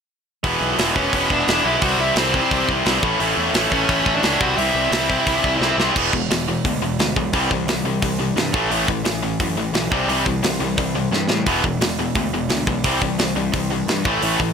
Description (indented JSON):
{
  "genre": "punk rock",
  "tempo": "174 BPM",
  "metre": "4/4",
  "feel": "straight",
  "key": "unclear",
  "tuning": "A4 = 440 Hz",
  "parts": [
    { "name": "distorted electric guitar", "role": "riff", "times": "0.4-14.5 s", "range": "A2 to E4", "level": "-22 LUFS", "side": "right 13 dB", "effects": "overdrive" },
    { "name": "tight distorted guitar", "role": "riff", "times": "0.4-14.5 s", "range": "E2 to C4", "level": "-22 LUFS", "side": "left 14 dB", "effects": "distortion" },
    { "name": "fuzz picked electric bass", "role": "bass", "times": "0.4-14.5 s", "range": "E1 to A2", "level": "-26 LUFS", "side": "equal", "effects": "overdrive" },
    { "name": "tight metal drum kit", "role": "drums", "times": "0.4-14.5 s", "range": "crash cymbal, hi-hat, kick drum, snare drum", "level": "-23 LUFS", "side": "right 1 dB", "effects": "none" },
    { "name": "dark smooth lead guitar", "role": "melody", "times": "1.0-5.7 s", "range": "C4 to F#5", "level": "-22 LUFS", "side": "equal", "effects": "overdrive" }
  ],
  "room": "light reverb",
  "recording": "none",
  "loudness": "-17 LUFS",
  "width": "side -6 dB against mid",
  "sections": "0.4-6.0 A section; 6.0-14.5 B section",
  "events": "drum fill 5.6-6.0, 11.1-11.5",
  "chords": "0.4 E; 1.8 C; 3.0 A; 4.4 C; 6.0 E; 7.3 C; 8.5 A5; 9.9 C; 11.5 E; 12.8 C"
}